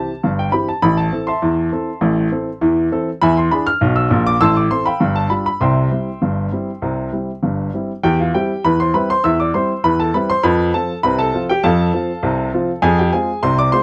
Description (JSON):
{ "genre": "ragtime piano", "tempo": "100 BPM", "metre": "2/4", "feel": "straight", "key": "C major", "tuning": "A4 = 439 Hz", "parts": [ { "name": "warm upright piano", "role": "solo", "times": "0.0-13.8 s", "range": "G1 to F6", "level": "-17 LUFS", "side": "equal", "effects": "none" } ], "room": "little or no reverb", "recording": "close, detailed microphones", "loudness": "-17 LUFS", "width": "mono", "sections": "0.0-8.0 A section; 8.0-13.8 B section", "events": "none", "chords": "0.0 C; 0.8 Am; 3.2 E7; 4.4 Am; 5.0 G5; 5.6 C; 8.0 C/E; 10.4 F; 12.8 Fm" }